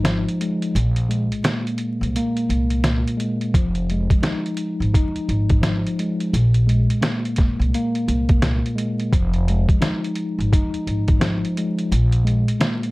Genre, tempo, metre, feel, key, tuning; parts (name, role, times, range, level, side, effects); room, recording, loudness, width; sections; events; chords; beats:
hip hop, boom-bap hip-hop; 86 BPM; 4/4; swing 62% on 16ths; F minor; A4 = 440 Hz
mellow tine electric piano; accompaniment; 0.0-12.9 s; Bb2 to Eb4; -22 LUFS; left 1 dB; medium stereo tremolo, high-pass filter, low-pass filter
upright bass; bass; 0.0-12.4 s; F1 to C2; -20 LUFS; equal
trip hop sampler-style drum kit; drums; 0.0-12.9 s; hi-hat, kick drum, snare drum; -20 LUFS; equal
light reverb; dark, warm production, vinyl crackle; -18 LUFS; side -21 dB against mid
0.0-12.9 A section
break 0.0-3.5; kick muted 2.1-3.5
0.0 Fm7; 0.8 Abadd9/Bb; 3.5 Fm7; 6.3 Abadd9/Bb; 9.1 Fm7; 11.9 Bb7(no3)
0.05 | 0.75 1.45 2.15 2.85 | 3.54 4.24 4.94 5.63 | 6.33 7.03 7.73 8.43 | 9.12 9.82 10.52 11.22 | 11.91 12.61